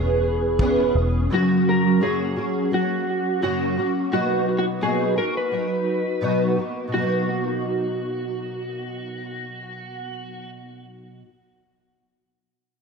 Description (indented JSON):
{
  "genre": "acoustic pop",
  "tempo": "85 BPM",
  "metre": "4/4",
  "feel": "swing 55% on 16ths",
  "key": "B major",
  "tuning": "A4 = 440 Hz",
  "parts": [
    { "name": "electric slide guitar", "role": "melody", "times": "0.0-10.5 s", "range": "F#4 to B4", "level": "-26 LUFS", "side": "right 1 dB", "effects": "wide subtle chorus, tape echo" },
    { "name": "fingerpicked twelve-string acoustic guitar", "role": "accompaniment", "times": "0.0-11.3 s", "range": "F#2 to G#4", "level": "-23 LUFS", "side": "equal", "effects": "ensemble chorus" },
    { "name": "vintage muted fingered electric bass", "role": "bass", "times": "0.0-1.3 s", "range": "E1", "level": "-23 LUFS", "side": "equal", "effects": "none" },
    { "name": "kick drum", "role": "drums", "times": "0.6-0.8 s", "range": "none", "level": "-26 LUFS", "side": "equal", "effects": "none" }
  ],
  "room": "moderate plate reverb, RT60 2.6 s",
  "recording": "dreamy mix soaked in reverb",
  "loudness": "-20 LUFS",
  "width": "side -5 dB against mid",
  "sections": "0.0-6.9 A section; 6.9-9.7 B section",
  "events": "none",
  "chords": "0.0 C#m7/E; 1.3 F#; 4.1 Bmaj7"
}